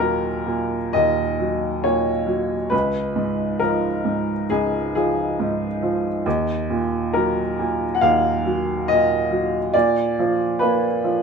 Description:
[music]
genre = neoclassical minimalist piano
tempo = 68 BPM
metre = 4/4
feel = rubato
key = Eb minor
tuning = A4 = 440 Hz
[part]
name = clear upright piano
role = solo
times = 0.0-11.2 s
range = Db2 to Gb5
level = -19 LUFS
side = equal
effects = none
[sound]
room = moderate studio reverb, RT60 0.6 s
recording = minimal, uncompressed stereo recording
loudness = -19 LUFS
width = side -5 dB against mid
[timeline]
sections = 0.0-11.2 A section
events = none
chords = 0.0 Ebm; 2.7 Db; 6.3 Ebmadd9; 9.7 Bb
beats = 0.00 0.94 1.84 | 2.72 3.61 4.50 5.39 | 6.25 7.13 8.00 8.87 | 9.74 10.61

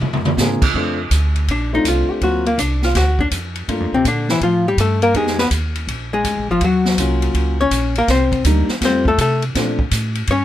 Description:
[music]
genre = jazz, small-group swing and bop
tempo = 164 BPM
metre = 4/4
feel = swing 66% on 8ths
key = Bb major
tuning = A4 = 439 Hz
[part]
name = upright bass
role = bass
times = 0.0-10.4 s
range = Ab1 to C3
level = -20 LUFS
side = right 1 dB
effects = none
[part]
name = open jazz drum kit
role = drums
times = 0.0-10.4 s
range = crash cymbal, hi-hat, kick drum, ride cymbal, snare drum, toms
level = -22 LUFS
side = right 1 dB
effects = none
[part]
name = warm concert grand piano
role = accompaniment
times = 0.4-9.8 s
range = F3 to Ab4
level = -21 LUFS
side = left 1 dB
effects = none
[part]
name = archtop guitar, miked and amplified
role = melody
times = 1.5-10.4 s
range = C3 to Db5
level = -17 LUFS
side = left 3 dB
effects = none
[sound]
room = little or no reverb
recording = none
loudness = -15 LUFS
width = side -12 dB against mid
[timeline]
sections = 0.7-10.4 A section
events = drum fill 0.0-0.4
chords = 0.0 Bb9; 0.7 Bbmaj7; 2.2 D7alt; 3.7 Gm7; 5.1 Fm7b5; 5.9 Bb7; 6.6 Ebm7; 8.1 Cm9; 8.8 F; 9.5 Bbmaj7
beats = 0.01 0.38 | 0.74 1.11 1.48 1.84 | 2.21 2.58 2.95 3.31 | 3.68 4.05 4.42 4.78 | 5.15 5.51 5.88 6.25 | 6.62 6.98 7.35 7.71 | 8.08 8.45 8.81 9.18 | 9.55 9.91 10.28

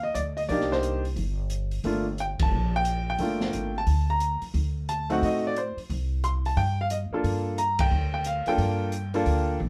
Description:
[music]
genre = jazz piano trio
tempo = 178 BPM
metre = 4/4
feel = swing 64% on 8ths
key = G minor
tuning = A4 = 438 Hz
[part]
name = clear grand piano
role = melody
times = 0.0-9.6 s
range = A3 to C6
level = -29 LUFS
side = equal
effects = none
[part]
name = upright bass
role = bass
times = 0.0-9.7 s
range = F1 to A2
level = -30 LUFS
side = equal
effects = none
[part]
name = open jazz drum kit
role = drums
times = 0.2-9.7 s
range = hi-hat, kick drum, ride cymbal, snare drum, toms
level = -35 LUFS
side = equal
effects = none
[sound]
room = moderate studio reverb, RT60 0.6 s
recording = band playing live in one room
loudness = -27 LUFS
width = mono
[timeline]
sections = 0.0-9.7 A section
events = band accent 2.4, 7.7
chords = 0.0 Cm7; 1.8 Gm7; 4.5 D7b9; 5.9 C5; 7.2 Gm7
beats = 0.16 | 0.49 0.83 1.17 1.51 | 1.84 2.18 2.52 2.86 | 3.19 3.53 3.87 4.21 | 4.54 4.88 5.22 5.55 | 5.89 6.23 6.57 6.90 | 7.24 7.58 7.91 8.25 | 8.59 8.93 9.26 9.60

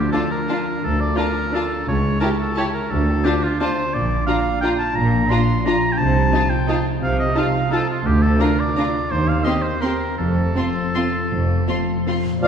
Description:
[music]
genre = classical, orchestral ballroom waltz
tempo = 153-187 BPM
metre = 3/4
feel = rubato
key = unclear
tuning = A4 = 441 Hz
[part]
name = clear oboe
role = second line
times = 0.0-12.5 s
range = F4 to C6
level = -23 LUFS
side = right 1 dB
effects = none
[part]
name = concert harp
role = arpeggios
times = 0.0-12.5 s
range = Bb2 to D5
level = -26 LUFS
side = left 3 dB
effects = none
[part]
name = clear studio cello section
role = bass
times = 0.0-12.5 s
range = C#2 to C3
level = -24 LUFS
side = right 1 dB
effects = none
[part]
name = rich studio double bass section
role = bass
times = 0.0-12.5 s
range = F1 to Eb2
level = -24 LUFS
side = right 1 dB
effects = none
[part]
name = rich studio violin section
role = melody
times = 0.1-12.5 s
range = F5 to C6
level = -33 LUFS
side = left 3 dB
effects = none
[part]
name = rich studio violin section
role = second line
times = 0.1-12.5 s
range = F4 to G4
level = -28 LUFS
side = left 1 dB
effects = none
[part]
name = rich studio viola section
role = accompaniment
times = 0.1-12.1 s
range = C4 to E4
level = -27 LUFS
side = right 1 dB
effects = none
[part]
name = clear clarinet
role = second line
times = 12.4-12.5 s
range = D5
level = -17 LUFS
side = left 2 dB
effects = none
[part]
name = hollow large flute ensemble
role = second line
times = 12.4-12.5 s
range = F6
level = -27 LUFS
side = left 1 dB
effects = none
[part]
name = warm bassoon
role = accompaniment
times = 12.4-12.5 s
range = F3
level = -20 LUFS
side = right 2 dB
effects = none
[sound]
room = wet concert hall reverb, RT60 2.2 s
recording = heard from further back in the room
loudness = -17 LUFS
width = side -7 dB against mid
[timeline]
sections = 0.0-12.4 A section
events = none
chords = 0.0 Dm; 1.9 A7/C#; 2.9 Dm; 3.9 Bb; 6.0 F7/C; 8.1 Bb/D; 9.1 Cm/Eb; 10.2 F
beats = 0.14 0.49 | 0.84 1.18 1.54 | 1.88 2.22 2.57 | 2.91 3.25 3.61 | 3.95 4.29 4.64 | 4.97 5.31 5.66 | 6.00 6.33 6.69 | 7.02 7.37 7.72 | 8.06 8.41 8.78 | 9.12 9.46 9.83 | 10.19 10.56 10.95 | 11.31 11.68 12.07 | 12.43

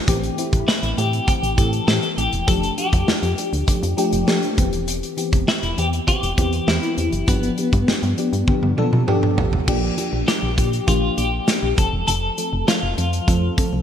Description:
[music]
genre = 1980s-style pop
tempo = 100 BPM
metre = 4/4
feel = straight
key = unclear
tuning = A4 = 440 Hz
[part]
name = FM electric piano with soft pad layer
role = accompaniment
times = 0.0-13.8 s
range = E3 to A4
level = -24 LUFS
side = left 1 dB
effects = chorus, phaser
[part]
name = solid FM bass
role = bass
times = 0.1-13.8 s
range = E1 to B2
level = -23 LUFS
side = equal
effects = none
[part]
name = modern studio drum kit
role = drums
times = 0.1-13.7 s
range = crash cymbal, hi-hat, kick drum, snare drum, toms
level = -21 LUFS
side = equal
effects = gated reverb
[part]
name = twelve-string electric guitar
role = melody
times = 0.7-13.5 s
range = B3 to A4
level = -24 LUFS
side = left 2 dB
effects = tremolo, ping-pong delay
[sound]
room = light reverb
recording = bright 1980s-style digital production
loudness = -17 LUFS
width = side -9 dB against mid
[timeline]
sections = 0.0-9.7 A section; 9.7-13.8 B section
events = drum fill 8.5-9.7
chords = 0.1 Am7; 2.5 F69; 4.6 Cmaj7/E; 7.3 G7; 9.7 Bb6; 11.8 F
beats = | 0.08 0.68 1.28 1.88 | 2.48 3.08 3.68 4.28 | 4.88 5.48 6.08 6.68 | 7.28 7.88 8.48 9.08 | 9.68 10.28 10.88 11.48 | 12.08 12.68 13.28

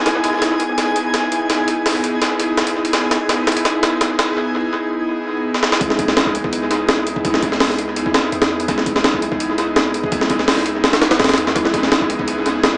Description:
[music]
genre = drum and bass, jungle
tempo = 167 BPM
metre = 4/4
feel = straight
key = C# minor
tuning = A4 = 443 Hz
[part]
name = airy breathy pad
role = sustained chords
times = 0.0-12.8 s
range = B3 to G#4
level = -19 LUFS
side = equal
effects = chorus
[part]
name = long sustained 808-style bass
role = bass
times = 0.0-12.8 s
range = C#2 to E2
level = -32 LUFS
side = equal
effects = high-pass filter
[part]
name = twinkling granular texture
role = texture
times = 0.0-4.4 s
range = G#5 to G#6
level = -25 LUFS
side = equal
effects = built-in reverb
[part]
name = breakbeat sampler-style drum kit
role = drums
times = 0.1-12.7 s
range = hi-hat, kick drum, snare drum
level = -16 LUFS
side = equal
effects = high-pass filter on kick, high-pass filter on hats, high-pass filter on snare, high-pass filter on room, tape echo
[sound]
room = moderate plate reverb, RT60 1.1 s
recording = echo-heavy mix, vinyl crackle, small speaker sound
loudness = -15 LUFS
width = side -26 dB against mid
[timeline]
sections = 0.0-5.8 A section; 5.8-12.8 B section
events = build-up 0.0-5.8; drum fill 0.1-4.4, 5.5; break 4.4-5.8; drop 5.8-12.8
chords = 0.0 C#m9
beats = | 0.06 0.42 0.78 1.14 | 1.50 1.86 2.21 2.57 | 2.93 3.29 3.65 4.01 | 4.37 4.73 5.09 5.45 | 5.81 6.17 6.53 6.88 | 7.25 7.60 7.96 8.32 | 8.68 9.04 9.40 9.76 | 10.12 10.48 10.84 11.20 | 11.56 11.91 12.28 12.63

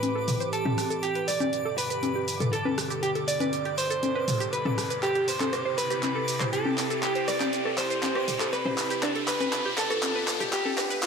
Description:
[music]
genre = progressive house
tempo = 120 BPM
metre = 4/4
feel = straight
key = unclear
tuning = A4 = 440 Hz
[part]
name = electric guitar through a small old amp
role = melody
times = 0.0-11.1 s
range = D4 to D5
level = -30 LUFS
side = right 2 dB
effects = tape echo
[part]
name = soft round pluck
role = second line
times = 0.0-11.1 s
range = D4 to D5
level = -35 LUFS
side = equal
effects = none
[part]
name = evolving wavetable pad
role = sustained chords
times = 0.0-11.1 s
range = G2 to A4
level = -35 LUFS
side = right 2 dB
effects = chorus, built-in reverb, phaser
[part]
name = deep house drum kit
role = drums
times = 0.0-11.1 s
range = handclaps, hi-hat, rim click, shaker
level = -32 LUFS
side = right 1 dB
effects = none
[part]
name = punchy analog drum machine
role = percussion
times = 0.0-10.9 s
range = congas, rim click, toms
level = -31 LUFS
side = left 3 dB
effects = none
[part]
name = riser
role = sound effects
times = 0.2-11.1 s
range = none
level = -36 LUFS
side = equal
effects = none
[part]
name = twinkling granular texture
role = texture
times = 0.0-11.1 s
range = D6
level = -41 LUFS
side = right 4 dB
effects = built-in reverb
[part]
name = glassy wavetable pluck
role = arpeggios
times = 0.2-11.0 s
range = G4 to C5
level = -34 LUFS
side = equal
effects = chorus, digital delay
[sound]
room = light reverb, digital ambience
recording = high-pass filter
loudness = -24 LUFS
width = side -6 dB against mid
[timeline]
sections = 0.0-11.1 A section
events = build-up 0.0-11.1; filter sweep on synth arpeggio sound 0.0-11.1; filter sweep on ambient pad 0.0-11.1; filter sweep 0.0-11.1; riser 0.2-11.1; drum fill 5.0-11.1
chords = 0.0 Am7; 1.0 G; 5.0 C; 9.0 Bdim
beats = 0.03 0.53 | 1.03 1.53 2.03 2.53 | 3.03 3.53 4.03 4.53 | 5.03 5.53 6.03 6.53 | 7.03 7.53 8.03 8.53 | 9.03 9.53 10.03 10.53 | 11.03

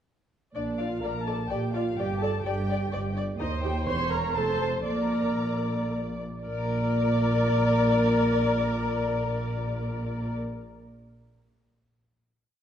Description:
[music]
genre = quick classical-period movement for string orchestra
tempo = 112-128 BPM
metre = 3/4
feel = straight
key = Bb major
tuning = A4 = 440 Hz
[part]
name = muted chamber violin section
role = second line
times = 0.5-10.3 s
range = Bb4 to C6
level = -35 LUFS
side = left 3 dB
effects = none
[part]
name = muted chamber double bass section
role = bass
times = 0.5-10.3 s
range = E1 to Eb2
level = -32 LUFS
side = right 1 dB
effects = none
[part]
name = muted chamber violin section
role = melody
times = 0.6-10.3 s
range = C5 to D5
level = -31 LUFS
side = left 3 dB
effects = none
[part]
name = muted chamber viola section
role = accompaniment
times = 0.6-10.3 s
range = D4 to C5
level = -33 LUFS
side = right 2 dB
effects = none
[part]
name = muted chamber cello section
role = bass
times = 0.6-10.3 s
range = Eb2 to Bb2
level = -29 LUFS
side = right 1 dB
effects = none
[sound]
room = wet recital hall reverb, RT60 1.8 s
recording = recorded in a church or concert hall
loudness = -25 LUFS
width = side -9 dB against mid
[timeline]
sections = 0.6-6.5 A section; 6.5-9.6 final chord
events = slowing down 2.7-6.5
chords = 0.6 Bb; 2.0 G5; 3.4 Cm/Eb; 3.9 C7b9/E; 4.4 F; 4.9 Bb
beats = | 0.56 1.04 1.51 | 1.98 2.45 2.92 | 3.40 3.87 4.37 | 4.88 5.40 5.92 | 6.45 6.97 7.50 | 8.02 8.55 9.07

